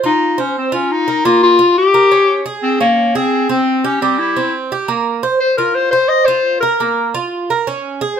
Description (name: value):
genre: latin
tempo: 173 BPM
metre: 4/4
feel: straight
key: F minor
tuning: A4 = 440 Hz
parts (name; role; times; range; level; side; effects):
- Cuban tres; arpeggios; 0.0-8.2 s; G3 to C5; -18 LUFS; right 5 dB; none
- bright clarinet; melody; 0.1-7.1 s; Bb3 to Eb5; -12 LUFS; left 3 dB; none
room: light reverb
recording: none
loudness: -12 LUFS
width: side -8 dB against mid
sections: 0.0-5.4 A section; 5.4-8.2 A section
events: none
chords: 0.0 F5; 1.2 Gm7b5; 2.6 Db5; 4.0 C7; 5.4 F5; 6.8 Bbm7